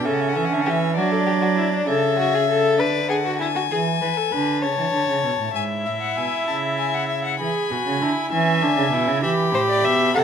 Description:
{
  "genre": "classical, baroque-style fugue for string quartet",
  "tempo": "65 BPM (dotted quarters)",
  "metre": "6/8",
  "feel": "straight",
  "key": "unclear",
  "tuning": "A4 = 441 Hz",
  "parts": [
    { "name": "warm violin", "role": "melody", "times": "0.0-10.2 s", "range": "D5 to B5", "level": "-25 LUFS", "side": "left 10 dB", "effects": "none" },
    { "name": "rich violin", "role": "second line", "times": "0.0-10.2 s", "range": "D4 to G#5", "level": "-24 LUFS", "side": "left 3 dB", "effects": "none" },
    { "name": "warm viola", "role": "accompaniment", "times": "0.0-1.9, 5.5-10.2 s", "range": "C#4 to A4", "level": "-24 LUFS", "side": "right 2 dB", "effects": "none" },
    { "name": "warm cello", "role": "bass", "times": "0.0-10.2 s", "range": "G#2 to F#3", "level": "-24 LUFS", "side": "right 5 dB", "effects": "none" }
  ],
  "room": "moderate recital hall reverb, RT60 1.8 s",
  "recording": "none",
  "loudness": "-18 LUFS",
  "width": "side -7 dB against mid",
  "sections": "0.0-5.5 A section; 5.5-10.2 B section",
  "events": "none",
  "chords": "0.0 A/C#; 1.0 D/F#; 1.9 A/C#; 2.8 Bm/D; 3.7 E7; 4.6 A/C#; 5.5 E/G#; 6.5 A/C# (rootless); 7.4 E; 8.3 E7; 9.2 Em"
}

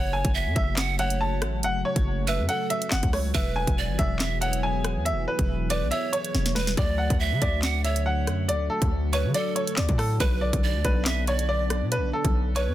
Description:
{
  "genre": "hip hop, drill",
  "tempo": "140 BPM",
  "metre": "4/4",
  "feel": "half-time",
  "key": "F# minor",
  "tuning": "A4 = 440 Hz",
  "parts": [
    { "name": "bright upright piano", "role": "melody", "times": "0.0-12.7 s", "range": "A4 to A5", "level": "-29 LUFS", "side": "equal", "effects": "tape echo" },
    { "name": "breathy pan flute", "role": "second line", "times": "0.0-12.7 s", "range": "A4 to F#5", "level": "-32 LUFS", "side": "right 7 dB", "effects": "tape echo" },
    { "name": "dark analog pad", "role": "sustained chords", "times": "0.4-12.7 s", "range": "C#3 to G#4", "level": "-34 LUFS", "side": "left 1 dB", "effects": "chorus" },
    { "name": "hard-hitting 808-style bass", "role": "bass", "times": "0.0-12.7 s", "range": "E1 to D3", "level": "-27 LUFS", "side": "equal", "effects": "none" },
    { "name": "drill drum kit", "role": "drums", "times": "0.2-12.7 s", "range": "handclaps, hi-hat, kick drum, rim click, snare drum", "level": "-26 LUFS", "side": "equal", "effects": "none" }
  ],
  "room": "little or no reverb",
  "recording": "dense, heavily limited modern master",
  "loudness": "-22 LUFS",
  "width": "side -13 dB against mid",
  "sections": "0.0-12.7 A section",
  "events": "drum fill 6.3-6.8",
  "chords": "0.0 F#m; 3.3 E; 6.8 D; 10.2 Bm"
}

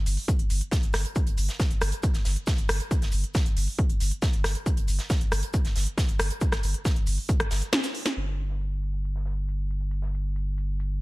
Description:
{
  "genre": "driving peak-time techno",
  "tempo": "137 BPM",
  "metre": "4/4",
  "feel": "straight",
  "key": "unclear",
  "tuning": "A4 = 436 Hz",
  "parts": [
    { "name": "saturated sub bass", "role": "bass", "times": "0.0-11.0 s", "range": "G1", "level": "-29 LUFS", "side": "equal", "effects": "overdrive, sidechain pumping, low-pass filter" },
    { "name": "techno drum kit", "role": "drums", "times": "0.1-8.1 s", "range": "hi-hat, rim click, snare drum", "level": "-30 LUFS", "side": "equal", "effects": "sidechain pumping on hats, low-pass filter on hats, low-pass filter on snare, low-pass filter on room" },
    { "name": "tight metal drum kit", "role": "drums", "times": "0.1-10.9 s", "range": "hi-hat, shaker, snare drum", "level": "-37 LUFS", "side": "right 1 dB", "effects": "high-pass filter on hats, low-pass filter on hats, high-pass filter on snare, low-pass filter on snare, high-pass filter on perc, low-pass filter on perc, high-pass filter on room, low-pass filter on room" },
    { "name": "electronic kick drum", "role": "drums", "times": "0.3-7.4 s", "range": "none", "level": "-25 LUFS", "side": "equal", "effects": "none" }
  ],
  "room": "little or no reverb",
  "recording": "bright 1980s-style digital production",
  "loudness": "-24 LUFS",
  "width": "side -21 dB against mid",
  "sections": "0.0-8.2 A section; 8.2-11.0 B section",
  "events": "drop 0.0-8.2; drum fill 7.7-8.2",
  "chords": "none"
}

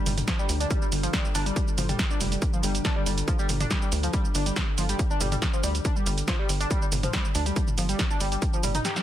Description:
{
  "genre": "driving peak-time techno",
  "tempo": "140 BPM",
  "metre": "4/4",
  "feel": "straight",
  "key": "unclear",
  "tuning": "A4 = 440 Hz",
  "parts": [
    { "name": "metallic inharmonic drone", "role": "drone", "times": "0.0-9.0 s", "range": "G2 to D3", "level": "-36 LUFS", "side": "equal", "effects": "chorus, built-in reverb, sidechain pumping" },
    { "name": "overdriven synth lead", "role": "riff", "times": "0.1-9.0 s", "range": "F3 to G4", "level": "-31 LUFS", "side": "left 1 dB", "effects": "analog chorus, sidechain pumping, ping-pong delay" },
    { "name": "tight sequencer bass", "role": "bass", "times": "0.1-8.8 s", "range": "F1 to D2", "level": "-28 LUFS", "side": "equal", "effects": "sidechain pumping" },
    { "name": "punchy analog drum machine", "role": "drums", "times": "0.1-9.0 s", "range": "hi-hat, shaker, snare drum, toms", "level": "-29 LUFS", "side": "right 1 dB", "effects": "sidechain pumping on hats, sidechain pumping on perc, sidechain pumping on toms" },
    { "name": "electronic kick drum", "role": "drums", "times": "0.3-8.5 s", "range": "none", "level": "-27 LUFS", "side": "equal", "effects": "overdrive" }
  ],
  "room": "little or no reverb",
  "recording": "dense, heavily limited modern master",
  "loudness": "-23 LUFS",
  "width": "side -12 dB against mid",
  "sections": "0.0-9.0 A section",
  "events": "kick drops out 8.8; drum fill 8.8",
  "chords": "0.0 G5"
}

